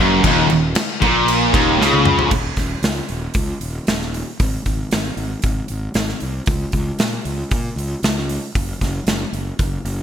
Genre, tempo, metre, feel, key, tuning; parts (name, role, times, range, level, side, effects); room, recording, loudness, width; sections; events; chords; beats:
hard rock; 115 BPM; 4/4; straight; A4 = 443 Hz
cranked stack guitar; riff; 0.0-2.3 s; Eb2 to Db3; -19 LUFS; left 9 dB; overdrive
distorted electric guitar; riff; 0.0-2.3 s; Eb2 to Db3; -20 LUFS; right 1 dB; distortion
tight distorted guitar; riff; 0.0-2.3 s; Eb2 to Db3; -19 LUFS; right 11 dB; distortion
fuzz fingered electric bass; bass; 0.0-10.0 s; Eb1 to Bb2; -23 LUFS; equal; overdrive
big rock drum kit; drums; 0.2-10.0 s; crash cymbal, hi-hat, kick drum, snare drum, toms; -20 LUFS; equal; gated reverb
light reverb, small room ambience; bright 1980s-style digital production; -16 LUFS; side -8 dB against mid
0.0-2.3 A section; 2.3-10.0 B section
drum fill 1.8-2.3
0.0 Ebm; 2.3 Dbsus2/Eb; 4.4 N.C.; 6.5 Bbm/Db; 8.6 N.C.
| 0.24 0.76 1.28 1.80 | 2.32 2.84 3.36 3.88 | 4.40 4.92 5.44 5.96 | 6.48 7.00 7.52 8.04 | 8.56 9.08 9.60